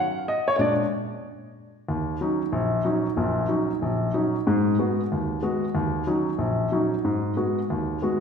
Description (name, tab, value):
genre	jazz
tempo	186 BPM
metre	4/4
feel	swing 61% on 8ths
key	Eb minor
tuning	A4 = 440 Hz
part	warm grand piano	accompaniment	0.0-8.2 s	Bb1 to Gb5	-22 LUFS	equal	none
room	wet recital hall reverb, RT60 1.7 s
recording	recorded in a church or concert hall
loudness	-22 LUFS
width	side -6 dB against mid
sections	0.0-1.9 A section; 1.9-8.2 B section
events	grand piano solo 0.0-1.9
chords	0.0 Ebm7; 0.6 Bb7; 1.9 Ebm7; 4.5 Abm7; 5.8 Ebm7; 7.0 Abm7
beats	0.25 | 0.58 0.90 1.22 1.55 | 1.87 2.19 2.52 2.84 | 3.16 3.49 3.81 4.13 | 4.46 4.78 5.11 5.43 | 5.75 6.08 6.40 6.72 | 7.05 7.37 7.70 8.02